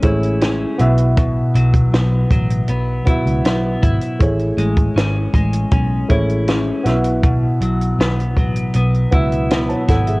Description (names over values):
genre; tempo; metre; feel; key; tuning
indie pop, bedroom pop; 79 BPM; 4/4; straight; unclear; A4 = 439 Hz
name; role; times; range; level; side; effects
clean electric guitar; accompaniment; 0.0-10.2 s; B2 to E4; -20 LUFS; left 1 dB; lush chorus, warbly pitch drift
dark upright piano; accompaniment; 0.0-10.2 s; A3 to A5; -22 LUFS; right 1 dB; cassette tape
vintage muted picked electric bass; bass; 0.0-10.2 s; G#1 to C#2; -19 LUFS; equal; none
compact cocktail drum kit; drums; 0.0-10.2 s; hi-hat, kick drum, snare drum; -18 LUFS; equal; cassette tape
room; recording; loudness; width
light reverb; home recording on cassette; -14 LUFS; side -24 dB against mid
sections
0.0-10.2 A section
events
none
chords
0.0 Amaj7; 0.8 Esus2; 4.2 Amaj7; 6.9 Esus2